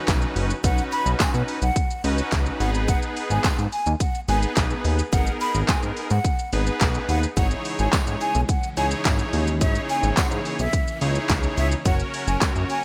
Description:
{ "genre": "dance-pop", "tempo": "107 BPM", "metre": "4/4", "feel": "straight", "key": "unclear", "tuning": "A4 = 440 Hz", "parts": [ { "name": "big bright polysynth", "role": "accompaniment", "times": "0.0-12.8 s", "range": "B3 to C#5", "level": "-31 LUFS", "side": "equal", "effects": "sidechain pumping" }, { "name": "downlifter", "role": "sound effects", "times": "0.0-2.9 s", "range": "none", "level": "barely audible", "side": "none", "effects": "none" }, { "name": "chorused synth bass", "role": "bass", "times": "0.1-12.6 s", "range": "F#1 to B2", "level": "-26 LUFS", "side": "equal", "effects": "sidechain pumping" }, { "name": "pop drum kit", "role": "drums", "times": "0.1-12.8 s", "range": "handclaps, hi-hat, kick drum, shaker, snare drum", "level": "-26 LUFS", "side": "equal", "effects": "gated reverb" }, { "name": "tambourine", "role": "percussion", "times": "0.1-12.5 s", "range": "none", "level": "-40 LUFS", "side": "equal", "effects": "none" }, { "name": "breathy concert flute", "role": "melody", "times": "0.6-12.8 s", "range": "E5 to B5", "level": "-31 LUFS", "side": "equal", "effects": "sidechain pumping, delay" }, { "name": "string machine, violins", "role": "sustained chords", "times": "7.4-12.8 s", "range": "C#3 to F#4", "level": "-36 LUFS", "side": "equal", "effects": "ensemble chorus, sidechain pumping" } ], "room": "light reverb, digital ambience", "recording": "bright 1980s-style digital production", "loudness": "-23 LUFS", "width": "mono", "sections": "0.0-12.8 A section", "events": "none", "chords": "0.0 Badd9; 2.6 G#m; 7.4 C#madd9/G#; 11.9 F#" }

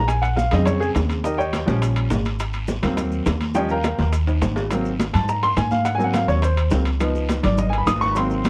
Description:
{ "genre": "Afro-Cuban jazz", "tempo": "208 BPM", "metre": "4/4", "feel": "straight", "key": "unclear", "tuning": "A4 = 439 Hz", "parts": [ { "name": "clear upright piano", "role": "accompaniment", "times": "0.0-8.5 s", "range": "Db3 to Eb6", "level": "-24 LUFS", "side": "equal", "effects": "none" }, { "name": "upright bass", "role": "bass", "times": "0.0-8.5 s", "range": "Ab1 to Ab2", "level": "-25 LUFS", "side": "equal", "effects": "none" }, { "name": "bongos", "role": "percussion", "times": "0.1-8.5 s", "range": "none", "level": "-31 LUFS", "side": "equal", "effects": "none" }, { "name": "congas", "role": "percussion", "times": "0.1-8.5 s", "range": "none", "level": "-29 LUFS", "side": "equal", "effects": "none" }, { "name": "guiro", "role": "percussion", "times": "0.1-8.5 s", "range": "none", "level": "-42 LUFS", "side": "equal", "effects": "none" }, { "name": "maracas", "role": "percussion", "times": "0.1-8.5 s", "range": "none", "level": "-47 LUFS", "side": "equal", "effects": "none" }, { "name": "timbales", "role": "percussion", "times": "0.1-8.5 s", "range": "none", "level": "-33 LUFS", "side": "equal", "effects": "none" } ], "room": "light reverb", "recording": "worn, warbling old tape, cassette tape, warbly pitch drift", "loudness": "-21 LUFS", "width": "mono", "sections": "0.0-4.7 A section; 4.7-8.5 A section", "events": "upright piano solo 0.0-8.5; drum fill 4.3-4.7", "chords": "0.1 Bbm7; 1.2 Eb9; 2.4 Ab9; 3.6 Eb9; 4.7 Ab9; 7.0 Db9" }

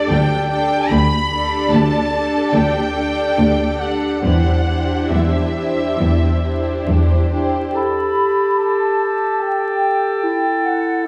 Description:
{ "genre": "cinematic", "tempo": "71 BPM", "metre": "4/4", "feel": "uneven beats, rubato", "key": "G major", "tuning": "A4 = 442 Hz", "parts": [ { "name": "rich studio violin section", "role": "melody", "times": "0.0-6.9 s", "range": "E5 to B5", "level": "-25 LUFS", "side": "equal", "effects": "none" }, { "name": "warm studio violin section", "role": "second line", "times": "0.0-7.7 s", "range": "G4 to D5", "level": "-26 LUFS", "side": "equal", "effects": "none" }, { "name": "rich studio viola section", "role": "accompaniment", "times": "0.0-7.7 s", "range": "D4 to G4", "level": "-24 LUFS", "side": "equal", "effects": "none" }, { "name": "bright studio cello section", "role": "bass", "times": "0.1-7.6 s", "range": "D2 to E2", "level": "-20 LUFS", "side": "equal", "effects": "none" }, { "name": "mellow large flute ensemble", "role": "second line", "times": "7.3-11.1 s", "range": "F#5 to B5", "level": "-23 LUFS", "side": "equal", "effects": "none" }, { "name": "warm clarinet", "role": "second line", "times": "7.7-11.1 s", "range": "E4 to G4", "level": "-22 LUFS", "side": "equal", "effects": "none" }, { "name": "warm oboe", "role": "second line", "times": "7.7-11.0 s", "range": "A4", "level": "-24 LUFS", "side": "equal", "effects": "none" } ], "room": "wet recital hall reverb, RT60 1.3 s", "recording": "heard from further back in the room, vinyl crackle", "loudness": "-17 LUFS", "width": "mono", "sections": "0.0-7.7 A section; 7.7-11.1 A section", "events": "none", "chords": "0.0 Dsus4; 4.2 Cadd9/E; 7.7 Gadd9" }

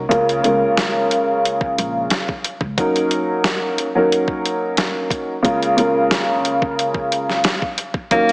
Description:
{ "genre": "hip hop, boom-bap hip-hop", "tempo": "90 BPM", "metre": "4/4", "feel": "swing 54% on 16ths", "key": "unclear", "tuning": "A4 = 437 Hz", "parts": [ { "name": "upright bass", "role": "bass", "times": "0.0-2.7, 8.1-8.3 s", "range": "Bb1 to Eb2", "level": "-27 LUFS", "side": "equal", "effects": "none" }, { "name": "dark upright piano", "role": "accompaniment", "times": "0.1-8.3 s", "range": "Db3 to Bb4", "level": "-17 LUFS", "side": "equal", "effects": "cassette tape, high-pass filter, low-pass filter" }, { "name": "boom bap sampler-style drum kit", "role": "drums", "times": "0.1-8.3 s", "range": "hi-hat, kick drum, snare drum", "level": "-20 LUFS", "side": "equal", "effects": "none" }, { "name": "mellow tenor saxophone", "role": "melody", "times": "8.1-8.3 s", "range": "Bb3", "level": "-13 LUFS", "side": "equal", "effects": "high-pass filter, low-pass filter" } ], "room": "wet echo chamber reverb, RT60 1.6 s, studio reverb", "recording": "heavily compressed radio sound, small speaker sound", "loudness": "-16 LUFS", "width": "side -26 dB against mid", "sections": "0.0-8.1 A section", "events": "none", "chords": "0.1 Bbm7/Db; 2.8 Ebm7; 5.4 Bbm7/Db" }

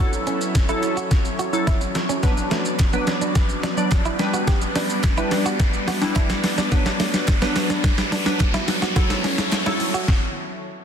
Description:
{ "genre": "dance-pop", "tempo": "107 BPM", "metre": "4/4", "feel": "straight", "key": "B minor", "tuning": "A4 = 440 Hz", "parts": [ { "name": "glassy wavetable pluck", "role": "accompaniment", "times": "0.0-10.1 s", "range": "F#3 to D5", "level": "-26 LUFS", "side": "equal", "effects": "chorus, sidechain pumping" }, { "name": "lush unison pad", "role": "sustained chords", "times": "0.0-10.1 s", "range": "F#3 to D5", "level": "-27 LUFS", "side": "equal", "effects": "chorus, sidechain pumping" }, { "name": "direct-recorded clean electric guitar", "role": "riff", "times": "0.0-10.1 s", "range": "A3 to G4", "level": "-30 LUFS", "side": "right 5 dB", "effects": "lush chorus" }, { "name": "riser", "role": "sound effects", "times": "0.0-10.1 s", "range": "none", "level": "-30 LUFS", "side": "equal", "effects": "none" }, { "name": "detuned 8-bit digital drum machine", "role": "drums", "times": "0.1-10.2 s", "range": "hi-hat, kick drum, shaker, snare drum", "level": "-21 LUFS", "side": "equal", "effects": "overdrive" }, { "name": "group handclap", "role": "percussion", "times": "2.8-9.7 s", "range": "none", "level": "-38 LUFS", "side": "right 7 dB", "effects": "none" } ], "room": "moderate lush hall reverb, RT60 1.9 s", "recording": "dense, heavily limited modern master", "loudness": "-18 LUFS", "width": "side -8 dB against mid", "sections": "0.0-10.8 A section", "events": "build-up 0.0-10.8; drum fill 0.0-10.1; riser 0.0-10.8; stop 10.1-10.8", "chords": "0.0 F#m7; 2.2 Bm; 4.2 G; 6.7 Bm; 9.0 F#m7" }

